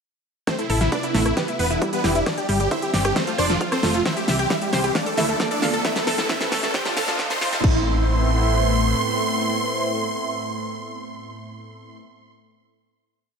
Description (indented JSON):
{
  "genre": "uplifting trance",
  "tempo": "134 BPM",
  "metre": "4/4",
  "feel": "straight",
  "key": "A minor",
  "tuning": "A4 = 440 Hz",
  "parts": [
    { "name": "supersaw chords", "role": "melody", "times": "0.5-12.0 s", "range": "B3 to C6", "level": "-24 LUFS", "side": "right 1 dB", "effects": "phaser, sidechain pumping, digital delay" },
    { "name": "lush unison pad", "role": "sustained chords", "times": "0.7-12.0 s", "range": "A2 to E4", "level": "-27 LUFS", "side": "equal", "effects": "chorus, phaser, sidechain pumping" },
    { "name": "analog pluck", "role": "arpeggios", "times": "0.5-7.8 s", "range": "G3 to F5", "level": "-27 LUFS", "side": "left 2 dB", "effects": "chorus, sidechain pumping, digital delay" },
    { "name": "big-room dance drum kit", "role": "drums", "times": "0.5-7.6 s", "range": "hi-hat, rim click, snare drum", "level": "-26 LUFS", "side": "equal", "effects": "sidechain pumping on hats" },
    { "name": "house drum kit", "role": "drums", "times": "0.5-7.7 s", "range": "crash cymbal, kick drum", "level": "-25 LUFS", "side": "equal", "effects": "high-pass filter on kick, high-pass filter on cymbals, high-pass filter on room" },
    { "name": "riser", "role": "sound effects", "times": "2.2-7.6 s", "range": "none", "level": "-30 LUFS", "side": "right 2 dB", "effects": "none" },
    { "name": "solid FM bass", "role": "bass", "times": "0.7-8.9 s", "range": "E1 to D2", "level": "-24 LUFS", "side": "equal", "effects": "sidechain pumping" }
  ],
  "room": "moderate lush hall reverb, RT60 1.7 s, digital ambience",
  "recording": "high-pass filter",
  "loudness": "-19 LUFS",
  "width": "side -6 dB against mid",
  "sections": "0.5-7.6 build; 7.6-11.2 final chord",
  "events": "build-up 0.5-7.6; drum fill 0.5-7.6; filter sweep on synth pluck 0.5-7.6; filter sweep 0.5-7.6; riser 2.2-7.6",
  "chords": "0.5 Amadd9; 1.4 Em7; 2.3 Gsus4; 3.2 F; 4.1 C; 5.0 Dm; 5.8 Amadd9/E; 6.7 F; 7.6 Amadd9"
}